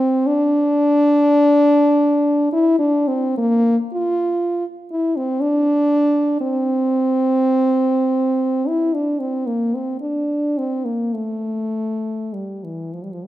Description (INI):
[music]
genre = classical, free, expressive piece for unaccompanied French horn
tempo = 32-41 BPM (dotted quarters)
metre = 6/8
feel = rubato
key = unclear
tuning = A4 = 440 Hz
[part]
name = mellow French horn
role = solo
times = 0.0-13.3 s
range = E3 to F4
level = -16 LUFS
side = equal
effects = none
[sound]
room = moderate recital hall reverb, RT60 1.8 s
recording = minimal, uncompressed stereo recording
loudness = -16 LUFS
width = side -15 dB against mid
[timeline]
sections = 0.0-13.3 A section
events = none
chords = none